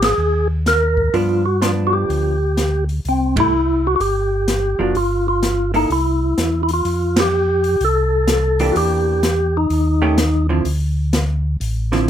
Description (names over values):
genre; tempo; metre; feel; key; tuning
soul jazz organ trio; 126 BPM; 4/4; swing 66% on 8ths; C major; A4 = 440 Hz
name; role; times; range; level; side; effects
percussive tonewheel organ; melody; 0.0-10.5 s; C4 to Bb4; -18 LUFS; equal; fast rotary speaker
mellow tonewheel organ; bass; 0.0-12.1 s; F#1 to G2; -20 LUFS; equal; chorus vibrato, slow rotary speaker
open jazz drum kit; drums; 0.0-12.0 s; hi-hat, kick drum, ride cymbal, snare drum; -23 LUFS; equal; none
vintage hollow-body jazz guitar; accompaniment; 1.1-12.1 s; D3 to A4; -21 LUFS; right 3 dB; none
room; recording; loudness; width
little or no reverb; close, detailed microphones; -15 LUFS; side -10 dB against mid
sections
0.0-6.9 A section; 6.9-12.1 B section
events
band accent 0.0, 3.3, 7.1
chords
0.0 Absus2; 1.1 G7; 3.0 C; 5.0 Gm7; 5.9 C; 6.9 Fadd9; 8.8 Em7b5; 9.7 Eb7#11; 10.7 D5